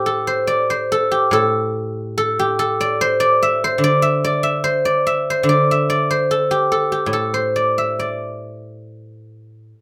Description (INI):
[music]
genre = chinese traditional, Chinese solo plucked strings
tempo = 65-75 BPM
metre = 4/4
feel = rubato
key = A yu mode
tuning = A4 = 440 Hz
[part]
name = guzheng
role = solo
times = 0.0-9.8 s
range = A2 to E5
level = -18 LUFS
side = equal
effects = none
[sound]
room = light reverb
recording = none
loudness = -18 LUFS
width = mono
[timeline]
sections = 0.0-9.8 A section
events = none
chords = none